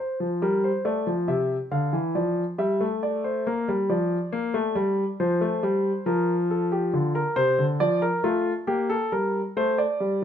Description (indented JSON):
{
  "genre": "classical, baroque-style two-part invention for grand piano",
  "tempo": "69 BPM",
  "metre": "4/4",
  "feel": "straight",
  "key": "Bb major",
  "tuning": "A4 = 440 Hz",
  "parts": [
    { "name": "warm concert grand piano", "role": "solo", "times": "0.0-10.2 s", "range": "C3 to F5", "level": "-22 LUFS", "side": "left 1 dB", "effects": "none" }
  ],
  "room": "moderate stone room reverb, RT60 1.1 s",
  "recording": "none",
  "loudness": "-22 LUFS",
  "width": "side -9 dB against mid",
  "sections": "0.0-10.2 A section",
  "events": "none",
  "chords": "0.0 F; 1.7 Dm; 3.5 Bb; 5.2 F; 6.9 Bb; 8.7 Gm"
}